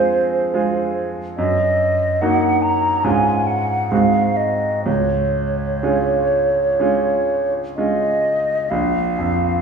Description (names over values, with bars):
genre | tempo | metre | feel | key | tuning
classical, romantic duo for flute and grand piano | 59-73 BPM | 4/4 | rubato | Db major | A4 = 440 Hz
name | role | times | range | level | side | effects
mellow hollow silver concert flute | melody | 0.0-9.6 s | C5 to Bb5 | -18 LUFS | right 1 dB | none
bright concert grand piano | accompaniment | 0.0-9.6 s | Bb1 to Ab4 | -20 LUFS | right 2 dB | none
room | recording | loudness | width
wet recital hall reverb, RT60 1.6 s | heard from further back in the room | -16 LUFS | side -6 dB against mid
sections
0.0-8.7 A section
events
none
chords
0.0 Fm; 1.4 Ebm/Gb; 3.0 Db/Ab; 3.9 Ab7; 4.9 Db; 8.7 Bb5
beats
0.53 | 1.38 2.22 3.05 3.91 | 4.86 5.83 6.80 7.77 | 8.71